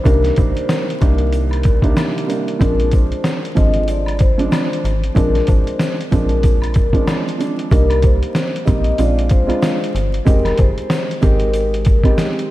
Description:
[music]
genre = hip hop, boom-bap hip-hop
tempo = 94 BPM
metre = 4/4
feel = swing 58% on 16ths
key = unclear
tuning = A4 = 439 Hz
[part]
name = dark baby grand piano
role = accompaniment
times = 0.0-12.5 s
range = C2 to G4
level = -21 LUFS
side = right 3 dB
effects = cassette tape, high-pass filter, low-pass filter
[part]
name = vibraphone with soft mallets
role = melody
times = 0.1-12.1 s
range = Bb4 to Eb5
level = -22 LUFS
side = left 3 dB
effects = high-pass filter, low-pass filter, tape echo
[part]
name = metallic FM bass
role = bass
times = 0.1-12.1 s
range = F1 to C2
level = -19 LUFS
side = equal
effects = none
[part]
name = trip hop sampler-style drum kit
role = drums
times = 0.1-12.5 s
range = hi-hat, kick drum, snare drum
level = -16 LUFS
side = equal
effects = none
[part]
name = tube shaker and woodblock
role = percussion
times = 0.1-12.4 s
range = none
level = -36 LUFS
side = left 3 dB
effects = none
[sound]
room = light reverb, studio ambience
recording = vinyl crackle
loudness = -14 LUFS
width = side -16 dB against mid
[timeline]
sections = 0.0-7.7 A section; 7.7-12.5 B section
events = none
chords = 0.0 Cm9; 2.6 Bb7; 7.7 Cm7; 9.0 Bb7; 10.3 Fm7 (rootless)

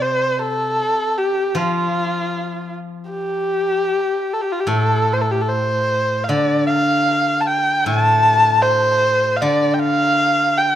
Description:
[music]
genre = chinese traditional, Chinese chamber ensemble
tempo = 77 BPM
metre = 4/4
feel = rubato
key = D yu mode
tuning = A4 = 440 Hz
[part]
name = dark erhu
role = melody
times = 0.0-10.8 s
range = F4 to A5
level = -17 LUFS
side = equal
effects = none
[part]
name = steel-string zither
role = accompaniment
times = 0.0-10.8 s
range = A2 to F3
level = -22 LUFS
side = equal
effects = none
[sound]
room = light reverb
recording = minimal, uncompressed stereo recording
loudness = -15 LUFS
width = side -11 dB against mid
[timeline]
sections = 0.0-10.8 A section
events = none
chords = none

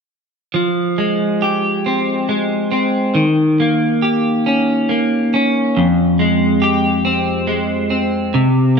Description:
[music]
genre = pop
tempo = 46 BPM (dotted quarters)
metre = 6/8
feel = straight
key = F minor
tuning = A4 = 440 Hz
[part]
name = clean electric guitar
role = accompaniment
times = 0.5-8.8 s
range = F2 to G4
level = -14 LUFS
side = equal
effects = double-tracked left and right
[sound]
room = wet scoring stage reverb, RT60 2.1 s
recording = dark, warm production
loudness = -14 LUFS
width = side -5 dB against mid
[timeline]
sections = 0.5-8.8 A section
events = none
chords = 0.5 Fmadd9; 3.2 Eb7; 5.8 Fmadd9

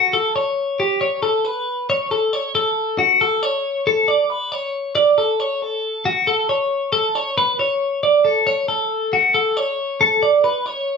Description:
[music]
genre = rock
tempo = 274 BPM (eighths)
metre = 7/8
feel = straight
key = D major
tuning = A4 = 440 Hz
[part]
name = twelve-string electric guitar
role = solo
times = 0.0-11.0 s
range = F#4 to D5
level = -16 LUFS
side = equal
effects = none
[sound]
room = moderate large studio reverb, RT60 0.8 s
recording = band playing live in one room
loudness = -16 LUFS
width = side -5 dB against mid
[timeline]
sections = 0.0-3.9 A section; 3.9-11.0 B section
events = none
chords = none

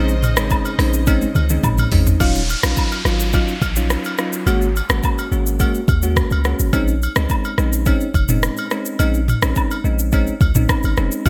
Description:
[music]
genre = afrobeats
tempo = 106 BPM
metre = 4/4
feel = straight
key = unclear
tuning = A4 = 441 Hz
[part]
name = bell-like FM electric piano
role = accompaniment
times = 0.0-11.3 s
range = Gb3 to Gb4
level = -25 LUFS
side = equal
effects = chorus
[part]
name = dark studio string section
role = sustained chords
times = 0.0-2.2 s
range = Db3 to Eb5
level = -31 LUFS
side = equal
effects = sidechain pumping
[part]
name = warm 808-style bass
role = bass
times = 0.0-11.3 s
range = Eb1 to Eb2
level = -21 LUFS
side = equal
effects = none
[part]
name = afro-pop drum kit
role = drums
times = 0.1-11.3 s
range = hi-hat, kick drum, rim click, shaker, toms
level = -22 LUFS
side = equal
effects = gated reverb
[part]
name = agogo bells and woodblock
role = percussion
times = 0.2-11.3 s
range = none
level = -30 LUFS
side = equal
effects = none
[part]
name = downlifter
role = sound effects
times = 2.2-6.7 s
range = none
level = -30 LUFS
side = equal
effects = none
[sound]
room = light reverb, digital ambience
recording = bright 1980s-style digital production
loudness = -18 LUFS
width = mono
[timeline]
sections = 0.0-2.2 A section; 2.2-11.3 B section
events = drum fill 1.1-2.2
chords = 0.0 Bbm11; 2.2 Ebm9; 4.5 Ab9sus4; 6.7 Bbm11

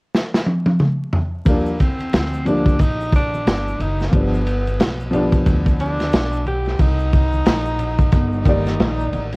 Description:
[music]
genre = hip hop, jazz-hop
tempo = 90 BPM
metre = 4/4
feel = swing 60% on 16ths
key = Eb major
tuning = A4 = 440 Hz
[part]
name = crunchy breakbeat drum kit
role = drums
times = 0.1-9.4 s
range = hi-hat, kick drum, ride cymbal, snare drum, toms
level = -18 LUFS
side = equal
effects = cassette tape
[part]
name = mellow tenor saxophone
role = melody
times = 1.5-9.4 s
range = Bb3 to G4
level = -24 LUFS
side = equal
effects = cassette tape, plate reverb
[part]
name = dark upright piano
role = accompaniment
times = 1.5-9.4 s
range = Eb3 to D5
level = -20 LUFS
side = left 1 dB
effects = cassette tape
[part]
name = upright bass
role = bass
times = 1.5-9.4 s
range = Gb1 to Eb2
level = -22 LUFS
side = equal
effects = none
[part]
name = egg shaker and congas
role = percussion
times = 1.5-9.4 s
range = none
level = -36 LUFS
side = equal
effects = none
[sound]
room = light reverb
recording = home recording on cassette, vinyl crackle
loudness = -16 LUFS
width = side -30 dB against mid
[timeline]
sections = 0.0-1.5 A section; 1.5-9.4 B section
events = drum fill 0.1-1.5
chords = 0.0 N.C.; 1.5 Ebmaj7; 4.1 G7; 6.8 Cm7

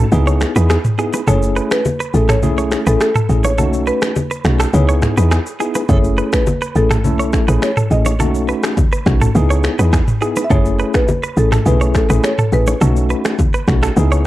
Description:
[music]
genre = afrobeats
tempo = 104 BPM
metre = 4/4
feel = straight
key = F# dorian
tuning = A4 = 441 Hz
[part]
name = bell-like tine electric piano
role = accompaniment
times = 0.0-14.3 s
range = A3 to A4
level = -20 LUFS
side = left 1 dB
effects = medium stereo tremolo
[part]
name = direct-recorded clean electric guitar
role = riff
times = 0.0-14.2 s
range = G#4 to C#5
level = -24 LUFS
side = right 4 dB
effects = spring reverb, analog delay
[part]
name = woody log drum bass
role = bass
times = 0.0-14.3 s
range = F#1 to E2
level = -15 LUFS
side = equal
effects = none
[part]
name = afro-pop drum kit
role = drums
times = 0.1-14.2 s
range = finger snaps, kick drum, rim click, shaker, toms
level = -18 LUFS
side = equal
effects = none
[part]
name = congas and bongos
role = percussion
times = 0.1-14.1 s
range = none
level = -23 LUFS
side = left 2 dB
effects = none
[part]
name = marimba with medium mallets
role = melody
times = 1.3-13.4 s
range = A4 to E5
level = -21 LUFS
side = equal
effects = none
[sound]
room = little or no reverb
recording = dry, gritty hardware recording, cassette tape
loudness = -13 LUFS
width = side -15 dB against mid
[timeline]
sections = 0.0-14.3 A section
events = break 0.0-5.9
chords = 0.1 C#m7; 1.3 F#m7; 3.6 B7; 4.7 C#m7; 5.9 F#m7; 8.2 B7; 9.4 C#m7; 10.5 F#m7; 12.8 B7

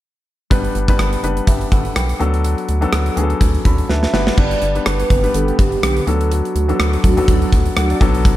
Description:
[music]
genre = 1980s-style pop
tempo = 124 BPM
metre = 4/4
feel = swing 55% on 16ths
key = unclear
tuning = A4 = 442 Hz
[part]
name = clear baby grand piano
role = accompaniment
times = 0.5-8.4 s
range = F#3 to B5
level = -21 LUFS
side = left 3 dB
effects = plate reverb
[part]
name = rubbery square bass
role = bass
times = 0.5-8.4 s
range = F#1 to D2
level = -19 LUFS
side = equal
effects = none
[part]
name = gated 80s drum kit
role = drums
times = 0.5-8.4 s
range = crash cymbal, hi-hat, kick drum, rim click, snare drum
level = -16 LUFS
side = equal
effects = none
[part]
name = hollow clarinet-like synth lead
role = melody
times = 3.9-8.0 s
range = F#4 to E5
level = -22 LUFS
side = right 2 dB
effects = chorus
[part]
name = mellow synth brass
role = stabs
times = 5.1-8.0 s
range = D3 to A4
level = -24 LUFS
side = right 2 dB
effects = chorus, digital delay
[sound]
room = light reverb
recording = dark, warm production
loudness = -14 LUFS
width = side -14 dB against mid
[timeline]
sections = 0.5-4.4 A section; 4.4-8.4 B section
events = grand piano fill 3.4-4.4, 7.5-8.2; drum fill 3.9-4.4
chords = 0.5 G; 2.2 D6; 4.1 G; 6.1 D6

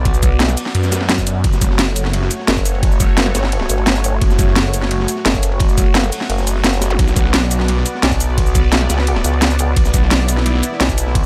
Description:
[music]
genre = dark technical drum and bass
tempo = 173 BPM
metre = 4/4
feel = straight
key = F# phrygian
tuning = A4 = 439 Hz
[part]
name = sweeping resonant pad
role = sustained chords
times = 0.0-11.3 s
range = A3 to D5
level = -26 LUFS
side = equal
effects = chorus, sidechain pumping
[part]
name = vowel-sweep wobble bass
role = bass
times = 0.0-11.3 s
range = F#1 to C#2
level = -19 LUFS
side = equal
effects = chorus, tube saturation
[part]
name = crunchy breakbeat drum kit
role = drums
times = 0.1-11.2 s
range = hi-hat, ride cymbal, snare drum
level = -30 LUFS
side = equal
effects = none
[part]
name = drum and bass drum kit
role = drums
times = 0.1-11.2 s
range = cabasa, hi-hat, ride cymbal, snare drum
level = -21 LUFS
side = equal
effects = overdrive
[part]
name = electronic kick drum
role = drums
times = 0.1-11.2 s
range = none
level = -18 LUFS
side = equal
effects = overdrive
[part]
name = phased detuned saw bass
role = bass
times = 0.7-10.6 s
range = F#1 to F#2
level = -20 LUFS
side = equal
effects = phaser
[part]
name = zap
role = sound effects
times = 6.9-7.0 s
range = none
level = -30 LUFS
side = equal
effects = none
[sound]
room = little or no reverb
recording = none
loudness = -16 LUFS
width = mono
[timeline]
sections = 0.0-11.3 A section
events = none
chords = 0.0 Bm; 1.4 F#m; 7.0 Bm

